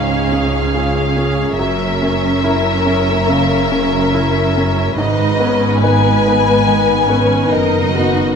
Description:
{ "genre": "cinematic, emotional film score for orchestra", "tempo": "70 BPM", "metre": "4/4", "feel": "rubato", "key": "G# minor", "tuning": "A4 = 439 Hz", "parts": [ { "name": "rich symphonic violin section", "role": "melody", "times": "0.0-8.4 s", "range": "D#5 to G#5", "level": "-20 LUFS", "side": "left 3 dB", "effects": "none" }, { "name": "warm symphonic violin section", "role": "second line", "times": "0.0-8.4 s", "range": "F#4 to B4", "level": "-20 LUFS", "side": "left 3 dB", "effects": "none" }, { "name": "clear baby grand piano", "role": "accompaniment", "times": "0.0-8.4 s", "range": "C#2 to B4", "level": "-18 LUFS", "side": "left 2 dB", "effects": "none" }, { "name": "rich chamber viola section", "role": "accompaniment", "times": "0.0-8.4 s", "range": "B3 to D#4", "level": "-22 LUFS", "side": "right 4 dB", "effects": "none" }, { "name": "rich symphonic cello section", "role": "bass", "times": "0.0-8.4 s", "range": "C#2 to G#2", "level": "-20 LUFS", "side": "right 2 dB", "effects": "none" }, { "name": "rich symphonic double bass section", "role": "bass", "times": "0.0-8.4 s", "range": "F#1 to C#2", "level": "-21 LUFS", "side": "right 4 dB", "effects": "none" } ], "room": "moderate recital hall reverb, RT60 1.7 s", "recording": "close, detailed microphones", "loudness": "-12 LUFS", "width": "side -6 dB against mid", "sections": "0.0-8.4 A section", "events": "none", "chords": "0.0 C#; 1.6 F#7; 5.0 G#madd9", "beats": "0.73 | 1.58 2.44 3.28 4.14 | 4.98 5.83 6.68 7.53" }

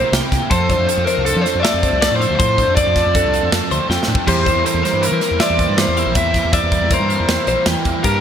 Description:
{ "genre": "math rock and midwest emo", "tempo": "159 BPM", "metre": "5/4", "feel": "straight", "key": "unclear", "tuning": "A4 = 445 Hz", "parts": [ { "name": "overdriven semi-hollow guitar", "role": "melody", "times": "0.0-8.2 s", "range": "A4 to E5", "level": "-19 LUFS", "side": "left 1 dB", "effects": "lush chorus" }, { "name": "clean electric guitar", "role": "accompaniment", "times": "0.0-8.2 s", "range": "F2 to C5", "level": "-24 LUFS", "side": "right 8 dB", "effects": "analog chorus" }, { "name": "twelve-string electric guitar", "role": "arpeggios", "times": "0.0-8.2 s", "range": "G4 to G5", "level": "-22 LUFS", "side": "left 4 dB", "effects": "wide subtle chorus" }, { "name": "crunchy overdriven guitar", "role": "riff", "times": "0.0-8.2 s", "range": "G2 to Bb4", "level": "-24 LUFS", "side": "right 1 dB", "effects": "ensemble chorus" }, { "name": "growling fingered electric bass", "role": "bass", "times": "0.1-8.2 s", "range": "Bb1 to F3", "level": "-21 LUFS", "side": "equal", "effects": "overdrive" }, { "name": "modern studio drum kit", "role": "drums", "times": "0.1-8.1 s", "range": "crash cymbal, hi-hat, kick drum, snare drum", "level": "-20 LUFS", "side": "equal", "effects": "gated reverb" } ], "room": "moderate lush hall reverb, RT60 1.6 s, studio reverb", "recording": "bright 1980s-style digital production", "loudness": "-14 LUFS", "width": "side -8 dB against mid", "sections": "0.0-8.2 A section", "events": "drum fill 3.9-4.3", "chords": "0.0 C7; 0.5 F6; 4.3 C7", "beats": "0.13 | 0.51 0.88 1.26 1.63 2.01 | 2.39 2.76 3.14 3.52 3.89 | 4.27 4.64 5.02 5.40 5.78 | 6.15 6.53 6.91 7.29 7.66 | 8.04" }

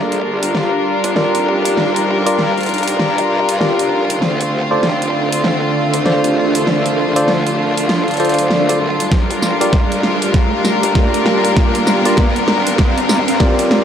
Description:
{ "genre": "glitch hop", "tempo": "98 BPM", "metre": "4/4", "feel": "swing 61% on 16ths", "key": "G minor", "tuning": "A4 = 438 Hz", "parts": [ { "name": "rich studio string section", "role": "sustained chords", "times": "0.0-13.8 s", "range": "D3 to Bb4", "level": "-17 LUFS", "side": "left 1 dB", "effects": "sidechain pumping, low-pass filter" }, { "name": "growl bass", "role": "bass", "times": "0.0-13.8 s", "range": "F1 to G2", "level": "-24 LUFS", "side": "equal", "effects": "chorus, high-pass filter" }, { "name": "riser", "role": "sound effects", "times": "1.3-13.8 s", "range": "none", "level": "-23 LUFS", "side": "right 1 dB", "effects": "none" }, { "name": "granular cloud pad", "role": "texture", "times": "0.0-13.8 s", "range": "D4 to G5", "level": "-22 LUFS", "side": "right 1 dB", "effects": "built-in reverb, sidechain pumping" }, { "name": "dubstep drum kit", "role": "drums", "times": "0.1-13.8 s", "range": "hi-hat, snare drum, tambourine", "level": "-20 LUFS", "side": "equal", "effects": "overdrive" }, { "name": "bright tine electric piano", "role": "stabs", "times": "1.2-13.8 s", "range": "F4 to D5", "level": "-19 LUFS", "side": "equal", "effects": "phaser, sidechain pumping, low-pass filter, analog delay" }, { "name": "electronic kick drum", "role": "drums", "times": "9.1-13.6 s", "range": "none", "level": "-14 LUFS", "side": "equal", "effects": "overdrive" } ], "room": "light reverb", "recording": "dry, gritty hardware recording", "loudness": "-13 LUFS", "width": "side -8 dB against mid", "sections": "0.0-13.8 A section", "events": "build-up 0.0-13.8; drum fill 0.0-13.8; filter sweep on tine electric piano 0.0-13.8; riser 1.3-13.8", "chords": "0.0 Gm7; 4.2 Dm7; 9.1 Gm7", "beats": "0.55 1.16 | 1.77 2.38 3.00 3.61 | 4.22 4.83 5.45 6.06 | 6.67 7.28 7.89 8.51 | 9.12 9.73 10.34 10.96 | 11.57 12.18 12.79 13.40" }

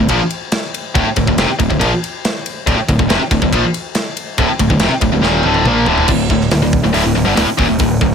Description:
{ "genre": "heavy metal", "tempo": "140 BPM", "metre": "4/4", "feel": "straight", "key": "D minor", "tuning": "A4 = 441 Hz", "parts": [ { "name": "tight distorted guitar", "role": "riff", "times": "0.0-8.1 s", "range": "D2 to Bb3", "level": "-14 LUFS", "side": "equal", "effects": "distortion" }, { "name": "fuzz picked electric bass", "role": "bass", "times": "0.0-8.1 s", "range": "D1 to Bb1", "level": "-19 LUFS", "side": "equal", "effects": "overdrive" }, { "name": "tight metal drum kit", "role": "drums", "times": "0.1-8.1 s", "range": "crash cymbal, hi-hat, kick drum, ride cymbal, snare drum, toms", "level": "-18 LUFS", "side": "equal", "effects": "none" } ], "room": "small room ambience", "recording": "none", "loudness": "-12 LUFS", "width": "side -7 dB against mid", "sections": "0.0-6.1 A section; 6.1-8.1 B section", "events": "drum fill 5.2-6.1", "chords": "0.0 Dm; 6.1 D5", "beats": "0.10 0.53 | 0.96 1.39 1.81 2.24 | 2.67 3.10 3.52 3.95 | 4.38 4.81 5.24 5.66 | 6.09 6.52 6.95 7.37 | 7.80" }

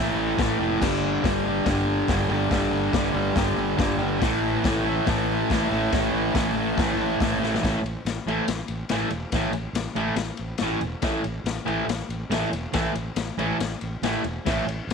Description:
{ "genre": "garage rock duo or trio", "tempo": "141 BPM", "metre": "4/4", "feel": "straight", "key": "unclear", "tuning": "A4 = 440 Hz", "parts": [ { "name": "fuzz guitar", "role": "riff", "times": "0.0-14.6 s", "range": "G2 to A3", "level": "-24 LUFS", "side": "right 1 dB", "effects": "distortion" }, { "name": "fuzz fingered electric bass", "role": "bass", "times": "0.0-14.9 s", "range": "E1 to A1", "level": "-31 LUFS", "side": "right 1 dB", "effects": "overdrive" }, { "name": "raw garage drum kit", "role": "drums", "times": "0.4-14.9 s", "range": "crash cymbal, hi-hat, kick drum, ride cymbal, snare drum", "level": "-28 LUFS", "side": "left 4 dB", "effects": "none" } ], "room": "light reverb, small room ambience", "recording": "1960s-style stereo", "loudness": "-22 LUFS", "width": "side -5 dB against mid", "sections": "0.0-7.6 A section; 7.6-14.9 B section", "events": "drum fill 7.4", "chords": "0.0 A5; 0.8 G5; 4.2 A5", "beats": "0.38 | 0.81 1.24 1.66 2.08 | 2.51 2.94 3.36 3.79 | 4.21 4.63 5.06 5.49 | 5.91 6.33 6.76 7.19 | 7.61 8.04 8.47 8.89 | 9.32 9.75 10.18 10.61 | 11.04 11.47 11.89 12.32 | 12.75 13.18 13.61 14.04 | 14.46 14.89" }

